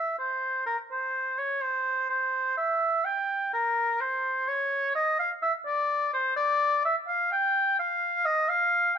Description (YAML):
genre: classical, baroque-style fantasia for unaccompanied oboe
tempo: 63 BPM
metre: 4/4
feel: rubato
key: unclear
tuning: A4 = 440 Hz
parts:
  - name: warm oboe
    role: solo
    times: 0.0-9.0 s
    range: Bb4 to G5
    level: -24 LUFS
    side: equal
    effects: none
room: light reverb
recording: nothing above 8.0 kHz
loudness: -24 LUFS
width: side -8 dB against mid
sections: 0.0-9.0 A section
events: none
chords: none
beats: 0.66 1.61 2.56 | 3.53 4.47 5.42 6.37 | 7.31 8.24